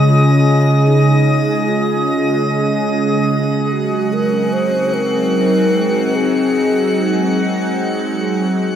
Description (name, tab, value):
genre	ambient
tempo	free time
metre	none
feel	none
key	Ab mixolydian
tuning	A4 = 445 Hz
part	evolving wavetable pad	sustained chords	0.0-8.8 s	Db3 to Ab4	-14 LUFS	right 1 dB	chorus, built-in reverb
part	drifting glass-harmonics texture	texture	0.0-8.8 s	Eb5 to Gb6	-22 LUFS	left 1 dB	chorus, built-in reverb
part	breathy mellow wooden-headed alto flute	melody	0.1-7.3 s	Eb4 to C5	-21 LUFS	equal	tape echo
room	wet huge ambient reverb, RT60 7.8 s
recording	none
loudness	-13 LUFS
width	side -9 dB against mid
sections	0.0-8.8 A section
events	fade-out 7.6-8.8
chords	0.0 Db; 3.3 Ab7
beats	free time